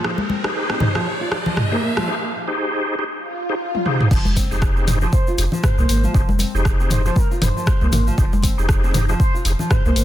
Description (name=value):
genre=afro house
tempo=118 BPM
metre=4/4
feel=swing 57% on 16ths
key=F minor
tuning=A4 = 440 Hz
part: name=nylon-string guitar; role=arpeggios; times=0.0-10.0 s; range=F3 to F4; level=-27 LUFS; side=right 1 dB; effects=vintage 12-bit sampler grit, sidechain pumping, digital delay
part: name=bright tonewheel organ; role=stabs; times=0.0-9.9 s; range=Eb4 to C5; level=-26 LUFS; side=equal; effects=chorus vibrato, fast rotary speaker, sidechain pumping, digital delay
part: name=deep house drum kit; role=drums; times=0.0-10.0 s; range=crash cymbal, hi-hat, rim click, toms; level=-23 LUFS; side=right 1 dB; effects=soft clipping on snare
part: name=riser and swell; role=sound effects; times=0.0-4.1 s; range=none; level=-28 LUFS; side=equal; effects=none
part: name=congas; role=percussion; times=0.2-9.8 s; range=none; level=-26 LUFS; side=left 3 dB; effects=none
part: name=round analog bass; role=bass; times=4.1-10.0 s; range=F1 to C2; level=-20 LUFS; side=equal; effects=tube saturation, sidechain pumping
part: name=electronic kick drum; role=drums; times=4.1-9.8 s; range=none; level=-18 LUFS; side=equal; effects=none
part: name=tube shaker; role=percussion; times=4.1-10.0 s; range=none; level=-34 LUFS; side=left 4 dB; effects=none
part: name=expressive portamento lead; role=melody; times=5.1-10.0 s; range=Bb4 to C5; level=-29 LUFS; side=right 1 dB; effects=wide subtle chorus, digital delay
room=light reverb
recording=dense, heavily limited modern master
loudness=-16 LUFS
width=side -12 dB against mid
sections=0.0-4.1 A section; 4.1-10.0 B section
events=build-up 0.0-4.1; riser 0.0-2.1; swell 3.3-4.1; drum fill 3.7-4.1; drop 4.1-10.0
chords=0.0 Fm7